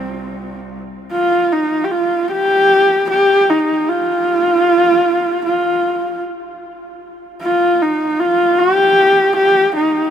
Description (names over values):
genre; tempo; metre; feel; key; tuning
mongolian traditional, Mongolian folk; 76 BPM; 4/4; straight; C yu mode; A4 = 440 Hz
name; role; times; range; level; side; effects
warm horsehead fiddle; melody; 0.0-10.1 s; C4 to G4; -13 LUFS; equal; none
rich cello; drone; 0.0-0.8 s; C2; -34 LUFS; right 3 dB; none
room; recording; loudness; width
moderate huge ambient reverb, RT60 8.0 s; minimal, uncompressed stereo recording; -12 LUFS; side -9 dB against mid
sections
0.7-10.1 A section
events
none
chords
none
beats
| 0.74 1.52 2.31 3.10 | 3.88 4.67 5.45 6.23 | 7.02 7.80 8.59 9.37